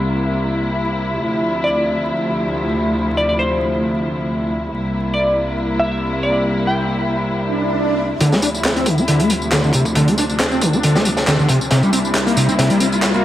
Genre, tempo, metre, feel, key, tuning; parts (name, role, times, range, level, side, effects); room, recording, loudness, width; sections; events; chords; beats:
breakbeat, breaks; 137 BPM; 4/4; swing 54% on 16ths; D minor; A4 = 444 Hz
muted studio string section; sustained chords; 0.0-13.2 s; C2 to E4; -19 LUFS; equal; vintage 12-bit sampler grit, sidechain pumping, low-pass filter
glassy wavetable pluck; melody; 1.6-7.0 s; C5 to G5; -20 LUFS; equal; chorus, telephone sound, dub echo
swell and riser; sound effects; 7.4-13.2 s; -24 LUFS; right 1 dB
overdriven acid bass; riff; 8.2-13.2 s; C3 to D4; -16 LUFS; equal; distortion, ensemble chorus, dub echo
crunchy breakbeat drum kit; drums; 8.2-13.1 s; hi-hat, kick drum, snare drum; -21 LUFS; equal; high-pass filter on kick, high-pass filter on hats, high-pass filter on snare, high-pass filter on room
electronic tambourine and handclaps; drums; 8.2-13.2 s; -23 LUFS; equal; low-pass filter on perc, low-pass filter on snare
moderate digital room reverb, RT60 1.2 s, small room ambience; vinyl crackle; -15 LUFS; side -13 dB against mid
0.0-8.2 A section; 8.2-13.2 B section
swell 7.4-8.2; build-up 8.2-13.2; riser 8.2-13.2; filter sweep on acid bass 8.2-13.2; drum fill 11.7-13.2
0.0 C7; 1.2 Dm9; 4.7 C7; 8.2 Dm9; 11.7 C7
0.33 0.76 | 1.20 1.64 2.08 2.52 | 2.95 3.39 3.83 4.27 | 4.71 5.14 5.58 6.02 | 6.46 6.89 7.33 7.77 | 8.21 8.65 9.08 9.52 | 9.96 10.40 10.84 11.27 | 11.71 12.15 12.59 13.03